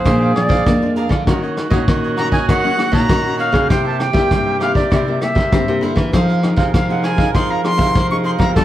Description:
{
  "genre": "samba and choro",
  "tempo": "99 BPM",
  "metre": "4/4",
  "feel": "straight",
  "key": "unclear",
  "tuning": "A4 = 441 Hz",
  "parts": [
    { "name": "bright reedy silver concert flute", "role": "melody", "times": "0.0-8.6 s", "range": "C5 to Db6", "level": "-20 LUFS", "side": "equal", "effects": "none" },
    { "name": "mellow cor anglais", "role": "second line", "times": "0.0-8.6 s", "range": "Gb4 to Bb4", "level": "-24 LUFS", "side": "right 5 dB", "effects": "none" },
    { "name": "cavaquinho", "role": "accompaniment", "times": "0.0-8.6 s", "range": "Eb4 to F5", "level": "-25 LUFS", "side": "right 5 dB", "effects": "none" },
    { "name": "nylon-string guitar", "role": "accompaniment", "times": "0.0-8.6 s", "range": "F2 to Ab4", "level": "-21 LUFS", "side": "left 3 dB", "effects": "none" },
    { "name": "nylon-string guitar", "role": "bass", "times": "0.1-8.6 s", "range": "Bb2 to C4", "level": "-21 LUFS", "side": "equal", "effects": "none" },
    { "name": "vintage brush drum kit", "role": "drums", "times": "0.1-8.6 s", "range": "hi-hat, kick drum, rim click", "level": "-18 LUFS", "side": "equal", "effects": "none" }
  ],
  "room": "wet studio reverb, RT60 0.6 s",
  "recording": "heard from further back in the room",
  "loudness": "-13 LUFS",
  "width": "side -13 dB against mid",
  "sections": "0.0-8.6 A section",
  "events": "none",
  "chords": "0.1 Bb7; 1.3 Ebm7; 3.7 C7; 6.1 Fm7"
}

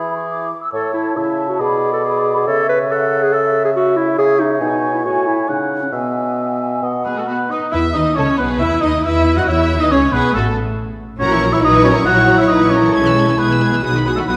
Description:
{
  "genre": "quick classical-period movement for symphony orchestra",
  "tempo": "138 BPM",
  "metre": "4/4",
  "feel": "straight",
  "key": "A major, E major from 4.2 s",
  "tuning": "A4 = 440 Hz",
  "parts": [
    { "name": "mellow hollow large flute ensemble", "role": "second line", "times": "0.0-7.5 s", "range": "E5 to E6", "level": "-26 LUFS", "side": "equal", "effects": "none" },
    { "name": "warm clarinet", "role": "second line", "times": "0.0-7.3 s", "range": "B3 to B4", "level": "-20 LUFS", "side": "equal", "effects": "none" },
    { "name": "warm oboe", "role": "second line", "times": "0.0-14.4 s", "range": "G#4 to F#5", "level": "-22 LUFS", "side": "equal", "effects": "none" },
    { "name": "warm bassoon", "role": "accompaniment", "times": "0.0-7.5 s", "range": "A2 to E3", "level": "-25 LUFS", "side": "equal", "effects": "none" },
    { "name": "rich chamber violin section", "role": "second line", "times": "7.0-14.4 s", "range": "F#4 to D#5", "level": "-26 LUFS", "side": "equal", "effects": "none" },
    { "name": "warm chamber cello section", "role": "bass", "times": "7.1-14.4 s", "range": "A3 to F#4", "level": "-23 LUFS", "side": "equal", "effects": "none" },
    { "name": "clear chamber violin section", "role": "melody", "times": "7.7-14.4 s", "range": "A4 to G#6", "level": "-29 LUFS", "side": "equal", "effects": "none" },
    { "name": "rich studio viola section", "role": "accompaniment", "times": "7.7-14.4 s", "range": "D#3 to B4", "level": "-24 LUFS", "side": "equal", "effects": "none" },
    { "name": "dark French horn section", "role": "sustained chords", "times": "7.7-14.4 s", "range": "F#3 to F#4", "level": "-22 LUFS", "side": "equal", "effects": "none" },
    { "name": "warm studio double bass section", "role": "bass", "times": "7.7-14.4 s", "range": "A1 to F#2", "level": "-22 LUFS", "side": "equal", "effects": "none" }
  ],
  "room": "wet concert hall reverb, RT60 2.0 s",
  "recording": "none",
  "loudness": "-16 LUFS",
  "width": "mono",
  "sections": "0.0-7.7 A section; 7.7-14.4 B section",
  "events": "none",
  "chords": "0.0 E; 0.7 A; 1.6 Bm6; 2.5 A6/C#; 4.2 C#m; 5.0 A; 5.9 E/B; 6.8 B; 7.7 E5; 9.5 C#m; 10.3 N.C.; 11.2 F#7/A#; 12.9 E/B; 13.8 B"
}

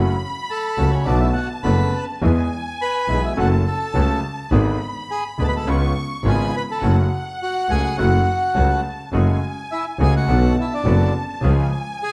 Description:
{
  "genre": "tango",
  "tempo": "104 BPM",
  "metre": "4/4",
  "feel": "rubato",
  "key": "F# minor",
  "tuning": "A4 = 440 Hz",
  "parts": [
    { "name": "rich studio violin section", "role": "second line", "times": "0.0-12.1 s", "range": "F#5 to C#6", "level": "-33 LUFS", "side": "equal", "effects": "none" },
    { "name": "bright concert grand piano", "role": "accompaniment", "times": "0.0-11.7 s", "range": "D1 to A4", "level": "-26 LUFS", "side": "equal", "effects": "none" },
    { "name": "bandoneon", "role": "stabs", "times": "0.0-11.7 s", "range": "G#3 to G#4", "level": "-35 LUFS", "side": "equal", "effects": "none" },
    { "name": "clear double bass", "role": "bass", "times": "0.0-11.7 s", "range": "F#1 to E2", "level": "-22 LUFS", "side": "equal", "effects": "none" },
    { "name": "bandoneon", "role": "melody", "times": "0.4-12.1 s", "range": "C#4 to B5", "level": "-26 LUFS", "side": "equal", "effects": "none" }
  ],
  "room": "moderate large studio reverb, RT60 1.3 s",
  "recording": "dark, warm production",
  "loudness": "-20 LUFS",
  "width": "mono",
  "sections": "0.0-9.1 A section; 9.1-12.1 A section",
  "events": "none",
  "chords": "0.0 F#m; 1.1 Bm7; 2.2 E; 3.4 F#m; 4.5 G#dim; 5.7 C#7; 6.8 F#m; 9.1 F#madd9; 10.3 Bm; 11.4 C#"
}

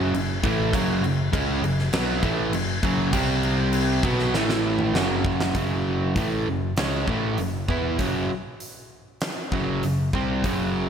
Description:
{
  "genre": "hard rock",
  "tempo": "99 BPM",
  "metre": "4/4",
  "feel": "straight",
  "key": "F# minor",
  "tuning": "A4 = 440 Hz",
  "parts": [
    { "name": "crunchy overdriven guitar", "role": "riff", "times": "0.0-10.9 s", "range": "F#2 to E4", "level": "-26 LUFS", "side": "right 8 dB", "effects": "analog chorus" },
    { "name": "sludgy distorted guitar", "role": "riff", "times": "0.0-10.9 s", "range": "F#2 to E4", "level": "-26 LUFS", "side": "left 8 dB", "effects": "overdrive" },
    { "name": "overdriven picked electric bass", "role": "bass", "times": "0.0-10.9 s", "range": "F#1 to E2", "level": "-30 LUFS", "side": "equal", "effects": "none" },
    { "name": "huge arena drum kit", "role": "drums", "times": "0.1-10.6 s", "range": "crash cymbal, hi-hat, kick drum, snare drum, toms", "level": "-28 LUFS", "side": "equal", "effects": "gated reverb" }
  ],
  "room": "light reverb, studio ambience",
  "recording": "bright 1980s-style digital production",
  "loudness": "-21 LUFS",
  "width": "side -8 dB against mid",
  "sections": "0.0-5.6 A section; 5.6-10.9 B section",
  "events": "drum fill 4.3-5.6",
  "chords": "0.0 F#m; 3.1 C5; 4.0 B5; 4.3 A5; 5.0 F#5; 5.6 F#m"
}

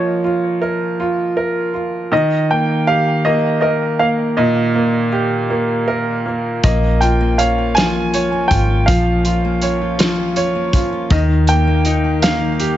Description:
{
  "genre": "six-eight pop ballad",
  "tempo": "53 BPM (dotted quarters)",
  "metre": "6/8",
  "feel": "straight",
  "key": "unclear",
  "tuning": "A4 = 440 Hz",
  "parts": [
    { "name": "warm baby grand piano", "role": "melody", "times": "0.0-12.8 s", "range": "Db5 to Ab5", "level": "-20 LUFS", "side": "right 1 dB", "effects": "tape echo" },
    { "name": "bright upright piano", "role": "accompaniment", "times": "0.0-12.8 s", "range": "Bb2 to Db5", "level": "-17 LUFS", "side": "right 2 dB", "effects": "none" },
    { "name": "fingerpicked steel-string acoustic guitar", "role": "arpeggios", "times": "6.6-12.8 s", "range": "Eb3 to G4", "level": "-22 LUFS", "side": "left 6 dB", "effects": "none" },
    { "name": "vintage muted fingered electric bass", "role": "bass", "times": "6.6-12.8 s", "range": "Ab1 to Eb2", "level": "-18 LUFS", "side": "equal", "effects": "none" },
    { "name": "loose indie drum kit", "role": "drums", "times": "6.6-12.8 s", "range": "hi-hat, kick drum, snare drum", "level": "-19 LUFS", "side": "equal", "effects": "none" }
  ],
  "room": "light reverb",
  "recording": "nothing above 7.8 kHz",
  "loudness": "-14 LUFS",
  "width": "side -12 dB against mid",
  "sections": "0.0-12.8 A section",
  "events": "none",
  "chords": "0.0 Bbm; 2.1 Eb; 6.6 Bbm; 11.1 Eb"
}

